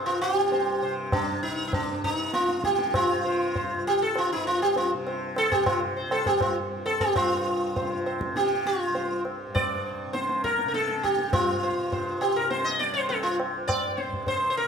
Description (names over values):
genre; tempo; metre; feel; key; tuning
indian classical, Hindustani; 100 BPM; 7/4; straight; C raga bhimpalasi; A4 = 440 Hz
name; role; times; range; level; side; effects
sitar; melody; 0.0-14.7 s; D4 to Eb5; -25 LUFS; equal; none
tanpura; drone; 0.0-14.7 s; C2 to C3; -35 LUFS; left 2 dB; none
tabla; percussion; 0.5-14.5 s; none; -31 LUFS; equal; none
room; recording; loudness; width
moderate recital hall reverb, RT60 1.5 s; none; -24 LUFS; side -6 dB against mid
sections
0.0-7.2 A section; 7.2-14.7 B section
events
speeding up 0.0-14.7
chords
none